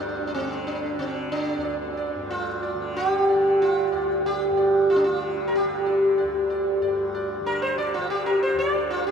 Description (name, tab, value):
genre	indian classical, Hindustani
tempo	93 BPM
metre	4/4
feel	straight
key	unclear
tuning	A4 = 440 Hz
part	sitar	melody	0.0-9.1 s	C4 to D5	-22 LUFS	equal	tape echo
part	tanpura	drone	0.0-9.1 s	D2 to D3	-32 LUFS	right 2 dB	none
room	wet huge ambient reverb, RT60 7.6 s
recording	in a vast, echoing space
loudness	-21 LUFS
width	side -7 dB against mid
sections	0.0-9.1 A section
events	none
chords	none